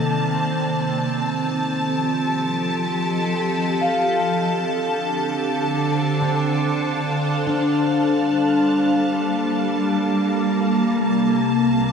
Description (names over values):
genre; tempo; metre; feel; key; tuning
ambient; free time; none; none; C dorian; A4 = 440 Hz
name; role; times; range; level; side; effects
evolving wavetable pad; sustained chords; 0.0-11.9 s; C3 to F5; -20 LUFS; right 1 dB; ensemble chorus, built-in reverb, shimmer reverb
concert harp; arpeggios; 0.0-10.8 s; C4 to F5; -25 LUFS; left 3 dB; ping-pong delay, shimmer reverb
bright studio violin section; texture; 0.0-11.9 s; A5; -27 LUFS; left 1 dB; shimmer reverb
deep rumbling drone; bass; 11.6-11.9 s; C2; -46 LUFS; equal; none
room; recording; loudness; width
wet cathedral reverb, RT60 5.2 s; dark, warm production; -18 LUFS; side -6 dB against mid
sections
0.0-11.0 A section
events
none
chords
0.0 Cm7; 0.9 F9; 4.2 Dm7; 7.6 Gm7; 11.0 Cm7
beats
free time